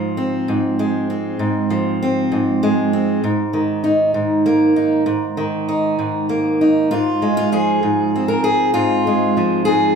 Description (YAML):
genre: folk, solo fingerstyle acoustic guitar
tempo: 65 BPM (dotted quarters)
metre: 6/8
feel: straight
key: unclear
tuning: A4 = 441 Hz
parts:
  - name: fingerpicked steel-string acoustic guitar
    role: solo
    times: 0.0-10.0 s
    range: Ab2 to Bb4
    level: -15 LUFS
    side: right 1 dB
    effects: none
room: moderate large studio reverb, RT60 1.2 s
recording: band playing live in one room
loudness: -15 LUFS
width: side -6 dB against mid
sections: 0.0-6.9 A section; 6.9-10.0 B section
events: none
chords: 0.0 Fm/Ab; 3.2 Eb5/Ab; 6.9 Fm/Ab